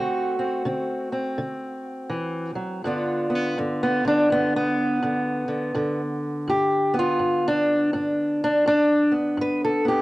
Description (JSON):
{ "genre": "acoustic country blues, solo or duo", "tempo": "82 BPM", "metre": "4/4", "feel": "swing 62% on 8ths", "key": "G mixolydian", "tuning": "A4 = 440 Hz", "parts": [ { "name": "fingerpicked steel-string acoustic guitar", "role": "solo", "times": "0.0-10.0 s", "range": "G2 to B4", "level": "-21 LUFS", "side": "equal", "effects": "cassette tape" } ], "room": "moderate spring reverb, RT60 1.8 s, small room ambience", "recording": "home recording on cassette", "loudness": "-21 LUFS", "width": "side -18 dB against mid", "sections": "0.0-2.8 A section; 2.8-10.0 B section", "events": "steel-string acoustic guitar solo 2.8-10.0", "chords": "0.0 D7; 2.8 G7", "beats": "0.65 1.38 2.10 | 2.83 3.56 4.29 5.01 | 5.74 6.47 7.20 7.93 | 8.66 9.39" }